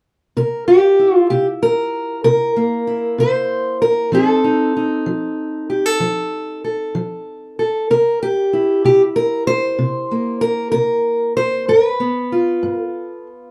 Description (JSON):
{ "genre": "acoustic country blues, solo or duo", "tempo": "64 BPM (dotted quarters)", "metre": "12/8", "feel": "straight", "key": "C mixolydian", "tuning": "A4 = 440 Hz", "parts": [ { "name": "fingerpicked steel-string acoustic guitar", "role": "solo", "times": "0.4-13.5 s", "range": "G2 to C5", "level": "-17 LUFS", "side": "equal", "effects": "none" } ], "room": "light reverb", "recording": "dark, warm production", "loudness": "-17 LUFS", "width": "mono", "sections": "0.4-13.5 A section", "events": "none", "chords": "0.4 C7; 4.1 F7; 7.9 C7; 11.7 G7", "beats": "| 0.37 1.31 2.25 3.19 | 4.13 5.07 6.01 6.95 | 7.89 8.84 9.79 10.73 | 11.68 12.63" }